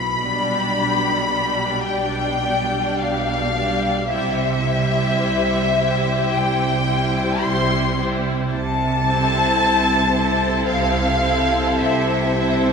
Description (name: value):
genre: classical, slow romantic movement for string orchestra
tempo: 54 BPM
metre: 4/4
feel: rubato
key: C major, A minor from 8.5 s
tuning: A4 = 439 Hz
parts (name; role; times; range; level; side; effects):
- rich studio violin section; melody; 0.0-12.7 s; E5 to C6; -21 LUFS; left 3 dB; none
- rich studio cello section; bass; 0.0-12.7 s; B2 to C3; -26 LUFS; right 3 dB; none
- rich studio double bass section; bass; 0.0-12.7 s; B1 to C2; -26 LUFS; right 4 dB; none
- rich studio violin section; second line; 0.2-12.7 s; G4 to D5; -26 LUFS; left 2 dB; none
- rich studio viola section; accompaniment; 0.2-12.7 s; G3 to E4; -24 LUFS; right 1 dB; none
room: wet concert hall reverb, RT60 2.4 s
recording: minimal, uncompressed stereo recording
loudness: -17 LUFS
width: side -6 dB against mid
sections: 0.0-12.7 A section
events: none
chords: 0.0 G/B; 4.1 C; 8.5 Am/C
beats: 0.77 1.88 3.00 | 4.10 5.21 6.33 7.44 | 8.53 9.60 10.68 11.79